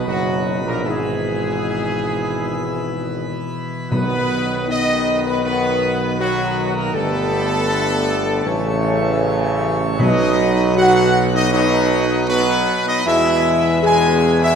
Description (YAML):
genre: classical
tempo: 78 BPM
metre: 4/4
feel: straight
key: B major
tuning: A4 = 442 Hz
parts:
  - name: warm trumpet section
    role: melody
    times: 0.0-14.6 s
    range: F#4 to G#5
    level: -21 LUFS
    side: equal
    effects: none
  - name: clear trombone section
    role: sustained chords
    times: 0.0-14.6 s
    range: F#2 to B3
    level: -24 LUFS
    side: right 2 dB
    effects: none
  - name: mellow French horn section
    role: sustained chords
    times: 0.0-14.6 s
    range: F#3 to G#4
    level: -23 LUFS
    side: left 4 dB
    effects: none
  - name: pipe organ, plenum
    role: sustained chords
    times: 0.0-14.6 s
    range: B2 to C#5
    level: -23 LUFS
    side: left 1 dB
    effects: none
  - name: warm tuba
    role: bass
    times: 0.0-14.6 s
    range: F#1 to E2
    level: -22 LUFS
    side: right 3 dB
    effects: none
  - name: timpani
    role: percussion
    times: 3.9-5.0, 10.0-11.1 s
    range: B2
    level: -24 LUFS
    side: equal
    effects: none
room: wet scoring stage reverb, RT60 1.7 s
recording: none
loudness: -16 LUFS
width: side -7 dB against mid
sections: 0.0-14.6 A section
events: none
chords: 0.0 B; 0.8 E/G#; 3.9 B; 6.9 G; 8.5 A; 10.0 B; 13.1 E